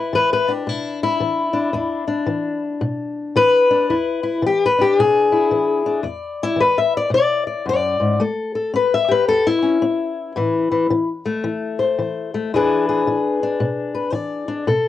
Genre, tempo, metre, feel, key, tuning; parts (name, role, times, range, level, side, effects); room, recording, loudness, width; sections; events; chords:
acoustic country blues, solo or duo; 112 BPM; 4/4; swing 63% on 8ths; E mixolydian; A4 = 441 Hz
fingerpicked steel-string acoustic guitar; solo; 0.0-14.9 s; E2 to E5; -17 LUFS; left 3 dB; cassette tape
wet booth ambience, RT60 0.2 s; home recording on cassette; -17 LUFS; side -12 dB against mid
0.0-14.9 A section
steel-string acoustic guitar solo 0.0-14.9
0.0 E7; 8.2 A7; 10.4 Am; 12.5 E7